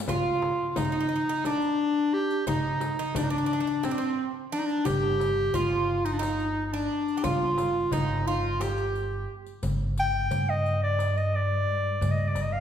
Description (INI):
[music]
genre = Turkish makam ensemble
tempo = 176 BPM (eighths)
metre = 7/8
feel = straight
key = unclear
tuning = A4 = 440 Hz
[part]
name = muted double bass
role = drone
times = 0.0-0.2, 9.6-12.6 s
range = G2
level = -33 LUFS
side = equal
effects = none
[part]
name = riq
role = percussion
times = 0.0-12.5 s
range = none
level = -43 LUFS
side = left 3 dB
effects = none
[part]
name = clear clarinet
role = melody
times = 0.1-12.6 s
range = C4 to G5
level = -27 LUFS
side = left 1 dB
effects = none
[part]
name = Greek bouzouki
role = second line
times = 0.1-9.3 s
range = C4 to G4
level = -34 LUFS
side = right 4 dB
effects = none
[part]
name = darbuka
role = percussion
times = 0.1-12.5 s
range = none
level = -33 LUFS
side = equal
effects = none
[part]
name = frame drum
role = percussion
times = 0.1-8.8 s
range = none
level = -37 LUFS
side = left 2 dB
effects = none
[part]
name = upright bass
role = bass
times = 4.9-12.6 s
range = G1 to G2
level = -31 LUFS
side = equal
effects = none
[sound]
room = wet recital hall reverb, RT60 1.6 s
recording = recorded in a church or concert hall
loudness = -24 LUFS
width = side -9 dB against mid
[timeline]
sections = 0.1-9.6 A section; 9.6-12.6 B section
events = none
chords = none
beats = | 0.08 0.42 0.77 1.11 1.45 1.79 2.13 | 2.47 2.81 3.15 3.50 3.84 4.18 4.52 | 4.86 5.20 5.54 5.88 6.22 6.57 6.91 | 7.25 7.59 7.93 8.27 8.61 8.95 9.29 | 9.63 9.97 10.31 10.66 11.00 11.34 11.68 | 12.02 12.36